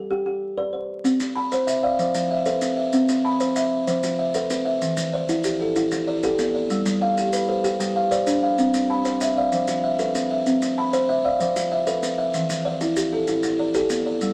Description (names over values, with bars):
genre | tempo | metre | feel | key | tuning
southern african traditional, mbira-style interlocking cycle | 127 BPM (dotted quarters) | 12/8 | straight | C major | A4 = 439 Hz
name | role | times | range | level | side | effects
kalimba | arpeggios | 0.0-14.3 s | E3 to A5 | -28 LUFS | equal | none
maracas | percussion | 1.0-14.3 s | none | -36 LUFS | equal | none
buzzing kalimba | arpeggios | 1.2-14.3 s | E3 to B5 | -24 LUFS | equal | none
room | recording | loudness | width
moderate studio reverb, RT60 0.8 s | vinyl crackle | -23 LUFS | mono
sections
0.0-1.0 A section; 1.0-14.3 A section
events
none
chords
0.0 G; 1.0 C; 2.0 F; 2.9 C; 3.9 F; 4.8 Em; 6.7 G; 8.6 C; 9.5 F; 10.5 C; 11.4 F; 12.3 Em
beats
0.10 0.57 | 1.04 1.52 1.99 2.46 | 2.93 3.40 3.88 4.35 | 4.82 5.29 5.76 6.23 | 6.70 7.17 7.65 8.12 | 8.59 9.06 9.53 10.00 | 10.47 10.94 11.40 11.87 | 12.34 12.81 13.28 13.75 | 14.21